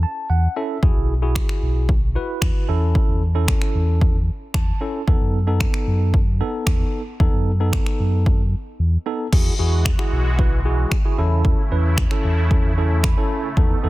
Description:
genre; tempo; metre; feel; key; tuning
dance-pop; 113 BPM; 4/4; straight; E major; A4 = 440 Hz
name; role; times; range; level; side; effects
tine electric piano; accompaniment; 0.0-13.9 s; B3 to B5; -26 LUFS; right 1 dB; medium stereo tremolo, sidechain pumping
sub bass with octave; bass; 0.0-13.9 s; B1 to F#2; -19 LUFS; equal; sidechain pumping
deep house drum kit; drums; 0.8-13.7 s; crash cymbal, finger snaps, kick drum; -19 LUFS; equal; soft clipping on snare
filtered supersaw swell; sustained chords; 9.3-13.9 s; B2 to F#4; -29 LUFS; right 1 dB; sidechain pumping
room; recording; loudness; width
little or no reverb; dense, heavily limited modern master; -17 LUFS; side -18 dB against mid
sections
0.0-9.3 A section; 9.3-13.9 B section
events
tine electric piano fill 0.0-0.8, 4.3-5.1, 12.8-13.6; silent gap 8.8-9.3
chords
0.0 A; 0.8 Eadd9; 2.7 A/E; 5.1 B7/E; 9.3 Eadd9; 11.2 A

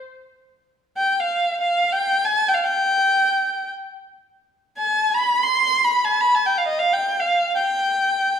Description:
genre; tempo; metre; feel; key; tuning
Persian modal ensemble; free time; none; none; unclear; A4 = 439 Hz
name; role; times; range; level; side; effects
rich violin; solo; 1.0-8.4 s; Eb5 to C6; -18 LUFS; equal; none
room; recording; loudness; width
wet recital hall reverb, RT60 1.5 s; minimal, uncompressed stereo recording; -17 LUFS; side -8 dB against mid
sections
0.5-8.4 A section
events
none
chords
none

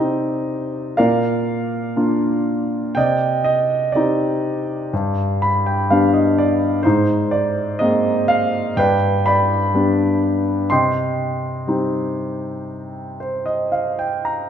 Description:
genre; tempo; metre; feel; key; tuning
classical, lyrical solo piano; 61 BPM; 4/4; rubato; C minor; A4 = 441 Hz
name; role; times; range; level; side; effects
warm grand piano; solo; 0.0-14.5 s; G2 to C6; -17 LUFS; equal; none
room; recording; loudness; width
moderate concert hall reverb, RT60 1.9 s; minimal, uncompressed stereo recording; -16 LUFS; side -8 dB against mid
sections
0.0-14.5 A section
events
grand piano fill 4.9-6.8, 12.7-14.5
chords
0.0 Cm; 1.0 Bb; 3.0 Cmadd9; 4.9 G; 6.8 Abadd9; 8.8 G; 10.7 Cm

